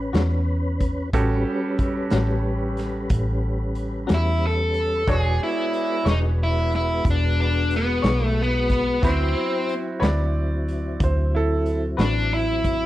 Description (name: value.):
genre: slow blues.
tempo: 61 BPM (dotted quarters).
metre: 12/8.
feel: straight.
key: A mixolydian.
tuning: A4 = 440 Hz.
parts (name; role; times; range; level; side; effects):
bright concert grand piano; accompaniment; 0.0-12.9 s; C#4 to B5; -32 LUFS; right 4 dB; none.
tonewheel organ; sustained chords; 0.0-12.9 s; F#3 to B4; -29 LUFS; left 1 dB; slow rotary speaker, chorus vibrato.
vintage muted fingered electric bass; bass; 0.0-12.9 s; E1 to E2; -23 LUFS; equal; none.
electric guitar through a small old amp; accompaniment; 0.1-12.2 s; A2 to C#5; -28 LUFS; left 5 dB; tremolo.
raw garage drum kit; drums; 0.1-12.8 s; hi-hat, kick drum, snare drum; -25 LUFS; equal; none.
overdriven electric guitar; melody; 4.1-12.9 s; B3 to A4; -23 LUFS; left 1 dB; spring reverb.
bright upright piano; second line; 10.0-11.8 s; E4 to D5; -27 LUFS; right 3 dB; none.
room: little or no reverb.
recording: dry, close 1970s-style studio recording.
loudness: -20 LUFS.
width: side -15 dB against mid.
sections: 0.0-12.9 A section.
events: none.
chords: 0.0 A13; 5.1 E13; 9.0 D13.